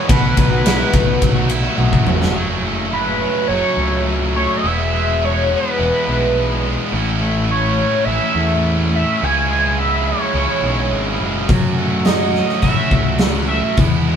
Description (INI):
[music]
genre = indie rock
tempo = 105 BPM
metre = 4/4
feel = straight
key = unclear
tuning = A4 = 438 Hz
[part]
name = overdriven synth lead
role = melody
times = 0.0-13.8 s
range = B4 to G#5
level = -19 LUFS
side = right 1 dB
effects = phaser
[part]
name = biting overdriven guitar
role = riff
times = 0.0-14.2 s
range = E2 to F#4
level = -23 LUFS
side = left 4 dB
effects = none
[part]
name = scooped high-gain guitar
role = riff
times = 0.0-14.2 s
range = F#2 to F#4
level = -22 LUFS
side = right 4 dB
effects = distortion
[part]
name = growling picked electric bass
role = bass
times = 0.1-14.2 s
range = E1 to F#2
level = -21 LUFS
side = equal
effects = overdrive
[part]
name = big rock drum kit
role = drums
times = 0.1-2.4, 11.5-13.9 s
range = hi-hat, kick drum, ride cymbal, snare drum, toms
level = -16 LUFS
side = equal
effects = none
[sound]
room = moderate studio reverb, RT60 0.8 s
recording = band playing live in one room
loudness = -14 LUFS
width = side -8 dB against mid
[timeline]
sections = 0.0-2.4 A section; 2.4-14.2 B section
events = drum fill 1.8-2.4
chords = 0.1 B7sus4; 2.4 F#m7; 4.6 E; 6.9 A; 9.2 C#m; 11.5 F#m7